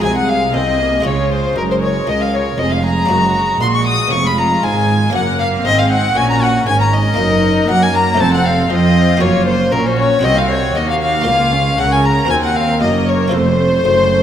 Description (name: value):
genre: classical, baroque-style concerto movement with solo episodes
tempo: 117 BPM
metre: 4/4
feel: straight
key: Db major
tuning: A4 = 440 Hz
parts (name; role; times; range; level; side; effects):
- rich chamber violin section; melody; 0.0-14.2 s; F4 to C5; -25 LUFS; left 4 dB; none
- rich violin; melody; 0.0-14.2 s; Bb4 to Eb6; -17 LUFS; left 2 dB; none
- warm chamber violin section; second line; 0.0-14.2 s; Bb4 to Eb6; -20 LUFS; left 3 dB; none
- buff-stop harpsichord; accompaniment; 0.0-14.2 s; C2 to C5; -26 LUFS; left 1 dB; none
- warm chamber viola section; accompaniment; 0.0-14.2 s; Ab3 to Eb4; -21 LUFS; left 1 dB; none
- rich chamber double bass section; bass; 0.0-14.2 s; F1 to Gb2; -20 LUFS; right 3 dB; none
- warm chamber cello section; bass; 0.0-14.2 s; C2 to Gb3; -18 LUFS; right 3 dB; none
room: wet recital hall reverb, RT60 1.8 s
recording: none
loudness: -12 LUFS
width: side -9 dB against mid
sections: 0.0-14.2 A section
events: none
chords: 0.0 Ab7/C; 1.1 Db; 3.1 Gb; 4.1 Db7/F; 5.1 Gb; 7.2 Ebm/Gb; 8.2 F; 9.2 Gb; 10.2 Cm7b5; 11.3 Bbm/Db; 12.3 Cm7b5/Eb; 13.3 F